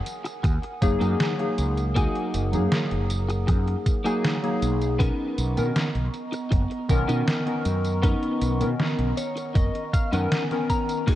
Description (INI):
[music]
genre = vaporwave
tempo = 79 BPM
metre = 4/4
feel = straight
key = unclear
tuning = A4 = 439 Hz
[part]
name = warbly tape-like pad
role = sustained chords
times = 0.0-11.2 s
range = B3 to D#6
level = -34 LUFS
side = right 2 dB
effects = chorus, built-in reverb
[part]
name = detuned 8-bit digital drum machine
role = drums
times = 0.1-11.2 s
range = crash cymbal, hi-hat, snare drum, tambourine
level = -29 LUFS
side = equal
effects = gated reverb
[part]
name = clean electric guitar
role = riff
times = 0.2-11.2 s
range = A#3 to A#5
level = -30 LUFS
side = left 2 dB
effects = analog chorus, vintage 12-bit sampler grit, tape echo
[part]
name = mellow fretless electric bass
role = bass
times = 0.4-10.3 s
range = F#1 to B2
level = -25 LUFS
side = equal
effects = analog chorus
[part]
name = electronic kick drum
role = drums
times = 0.4-11.2 s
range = none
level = -23 LUFS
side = equal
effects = none
[part]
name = warbly lo-fi synth keys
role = accompaniment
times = 0.8-11.1 s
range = D#3 to A#4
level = -27 LUFS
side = left 1 dB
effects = wide subtle chorus, vintage 12-bit sampler grit, tape echo
[sound]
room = digital ambience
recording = cassette tape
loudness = -22 LUFS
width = side -14 dB against mid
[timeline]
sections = 0.0-11.2 A section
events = clean electric guitar fill 8.8-11.1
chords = 0.0 F#69; 5.0 Bmaj9